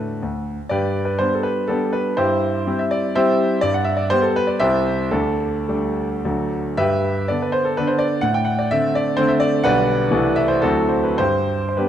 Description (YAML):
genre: classical, romantic triple-time dance for piano with dotted rhythms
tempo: 97-136 BPM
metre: 3/4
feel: rubato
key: G major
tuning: A4 = 440 Hz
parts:
  - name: clear grand piano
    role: solo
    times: 0.0-11.9 s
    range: B1 to G5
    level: -17 LUFS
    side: equal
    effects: none
room: moderate scoring stage reverb, RT60 1.9 s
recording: none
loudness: -17 LUFS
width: side -10 dB against mid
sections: 0.7-11.9 A section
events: none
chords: 0.0 D; 0.7 G; 2.2 C/G; 3.6 G; 4.6 C; 5.1 Dsus4; 6.2 D; 6.8 G; 8.2 D5/A; 9.7 G/B; 10.1 Am/C; 10.6 D9; 11.2 G